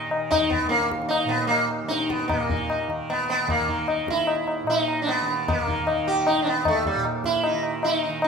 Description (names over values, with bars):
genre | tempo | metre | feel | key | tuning
indian classical, Hindustani | 152 BPM | 4/4 | straight | unclear | A4 = 440 Hz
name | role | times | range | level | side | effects
sitar | melody | 0.0-8.3 s | G3 to G4 | -23 LUFS | right 1 dB | none
tanpura | drone | 0.0-8.3 s | Eb2 to Eb3 | -31 LUFS | right 4 dB | none
tabla | percussion | 0.1-8.3 s | none | -26 LUFS | left 3 dB | none
room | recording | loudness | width
wet recital hall reverb, RT60 1.5 s | minimal, uncompressed stereo recording | -21 LUFS | side -5 dB against mid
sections
0.0-2.3 A section; 2.3-8.3 B section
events
none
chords
none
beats
0.31 | 0.71 1.11 1.51 1.91 | 2.31 2.71 3.10 3.50 | 3.90 4.29 4.69 5.08 | 5.48 5.87 6.26 6.66 | 7.05 7.44 7.83 8.22